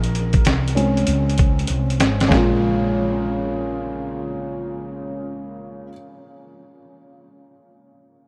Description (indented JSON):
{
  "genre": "hip hop, jazz-hop",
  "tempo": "97 BPM",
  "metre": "4/4",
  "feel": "swing 66% on 16ths",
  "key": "Bb minor",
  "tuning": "A4 = 440 Hz",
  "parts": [
    { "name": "warm upright piano", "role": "accompaniment", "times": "0.0-5.9 s", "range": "Db3 to Bb4", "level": "-25 LUFS", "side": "equal", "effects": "subtle chorus" },
    { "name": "woody fretless electric bass", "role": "bass", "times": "0.0-5.9 s", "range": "Ab1 to Db2", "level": "-25 LUFS", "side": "equal", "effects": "none" },
    { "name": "dusty soul sampler-style drum kit", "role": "drums", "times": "0.0-2.5 s", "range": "hi-hat, kick drum, snare drum", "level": "-23 LUFS", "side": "equal", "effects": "none" }
  ],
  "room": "moderate huge ambient reverb, RT60 8.5 s",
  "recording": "dreamy mix soaked in reverb",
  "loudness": "-20 LUFS",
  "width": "mono",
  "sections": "0.0-2.3 A section; 2.3-4.8 B section",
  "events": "upright piano solo 0.0-2.3; drum fill 1.7-2.3",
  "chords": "0.0 Bbm7",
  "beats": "0.46 1.08 1.70 | 2.32 2.93 3.55 4.17"
}